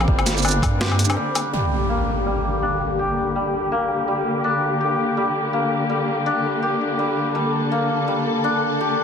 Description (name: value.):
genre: half-time drum and bass.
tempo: 165 BPM.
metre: 4/4.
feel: swing 58% on 16ths, half-time.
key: G minor.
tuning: A4 = 439 Hz.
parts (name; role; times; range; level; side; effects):
warm symphonic string section; sustained chords; 0.0-9.0 s; D3 to A4; -23 LUFS; left 2 dB; sidechain pumping, low-pass filter.
santur; arpeggios; 0.0-9.0 s; G3 to G4; -23 LUFS; equal; low-pass filter, tape echo.
deep soft wobble bass; bass; 0.0-1.2 s; G1 to G2; -21 LUFS; right 1 dB; chorus.
boom bap sampler-style drum kit; drums; 0.0-1.4 s; hi-hat, shaker, snare drum, woodblock; -23 LUFS; left 1 dB; overdrive.
electronic kick drum; drums; 0.1-0.7 s; none; -21 LUFS; right 1 dB; overdrive.
impact; sound effects; 1.5-3.0 s; none; -27 LUFS; right 1 dB; none.
room: light reverb.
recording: dense, heavily limited modern master.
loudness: -19 LUFS.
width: side -7 dB against mid.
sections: 0.0-1.5 A section; 1.5-9.0 B section.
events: drop 0.0-1.5; break 1.2-1.5; impact 1.5-3.0; filter sweep on string section 1.5-9.0.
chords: 0.0 Gm.